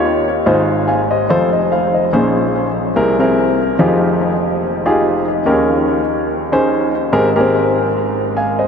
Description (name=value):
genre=gospel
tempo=144 BPM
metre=4/4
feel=swing 56% on 8ths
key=Ab major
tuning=A4 = 440 Hz
part: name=warm grand piano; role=solo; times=0.0-8.7 s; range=F1 to Ab5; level=-13 LUFS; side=left 1 dB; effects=ping-pong delay
room=wet huge ambient reverb, RT60 8.4 s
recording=dreamy mix soaked in reverb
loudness=-13 LUFS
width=side -6 dB against mid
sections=0.0-7.1 A section; 7.1-8.7 B section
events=none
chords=0.5 Ab6; 1.3 F7; 2.1 Bbm11; 3.0 C7b13; 3.8 Fm9; 5.5 Eb7sus4; 7.1 Abmaj9